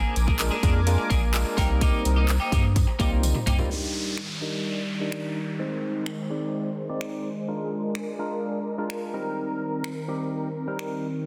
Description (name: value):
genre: dance-pop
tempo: 127 BPM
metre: 4/4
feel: straight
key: unclear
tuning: A4 = 441 Hz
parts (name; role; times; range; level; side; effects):
- sweeping resonant pad; sustained chords; 0.0-11.3 s; Eb3 to Eb6; -35 LUFS; equal; chorus, sidechain pumping, low-pass filter
- twelve-string electric guitar; riff; 0.0-3.6 s; Bb3 to Ab4; -33 LUFS; equal; lush chorus
- saturated sub bass; bass; 0.0-3.6 s; Bb1 to G2; -25 LUFS; equal; sidechain pumping
- house drum kit; drums; 0.2-10.9 s; finger snaps, handclaps, hi-hat, kick drum, toms; -28 LUFS; equal; soft clipping on snare
- tambourine; percussion; 0.2-3.7 s; none; -42 LUFS; equal; none
- barky tine electric piano; accompaniment; 0.4-11.1 s; G3 to D5; -34 LUFS; equal; analog chorus, sidechain pumping, low-pass filter
- downlifter; sound effects; 3.7-7.5 s; none; -36 LUFS; equal; none
room: light reverb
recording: dense, heavily limited modern master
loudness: -26 LUFS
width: mono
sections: 0.0-3.7 A section; 3.7-11.3 B section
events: drop 0.0-3.7; drum fill 3.2-3.7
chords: 0.0 Bb7; 1.6 Cm7; 3.7 Ebmaj7; 5.6 Ab; 7.5 Bb7; 9.1 Cm7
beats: 0.40 0.87 1.34 | 1.81 2.29 2.76 3.23 | 3.70 4.18 4.65 5.12 | 5.59 6.07 6.54 7.01 | 7.48 7.96 8.43 8.90 | 9.37 9.85 10.32 10.79